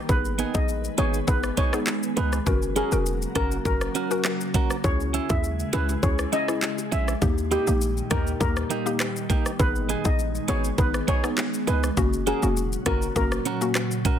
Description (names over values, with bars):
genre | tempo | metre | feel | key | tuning
dancehall | 101 BPM | 4/4 | straight | G# minor | A4 = 441 Hz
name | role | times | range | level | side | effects
glassy FM pad | sustained chords | 0.0-14.2 s | A#2 to B4 | -32 LUFS | equal | ensemble chorus, built-in reverb, sidechain pumping
steel pan | melody | 0.1-13.6 s | G4 to E5 | -29 LUFS | left 1 dB | tape echo
mallet-like synth pluck | accompaniment | 0.1-13.8 s | A#3 to A#4 | -30 LUFS | left 4 dB | chorus
short 808-style bass | bass | 0.1-13.4 s | E1 to D#2 | -27 LUFS | equal | none
pop drum kit | drums | 0.1-14.2 s | handclaps, hi-hat, kick drum, rim click, shaker | -26 LUFS | equal | soft clipping on snare
bongos | percussion | 0.1-14.2 s | none | -38 LUFS | right 6 dB | none
clean electric guitar | arpeggios | 0.4-14.2 s | A#3 to A#4 | -30 LUFS | right 10 dB | none
room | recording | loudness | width
light reverb | dense, heavily limited modern master | -22 LUFS | side -9 dB against mid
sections
0.0-14.2 A section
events
none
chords
0.1 G#m; 2.5 F#; 4.8 C#m; 7.2 D#; 9.6 G#m; 12.0 F#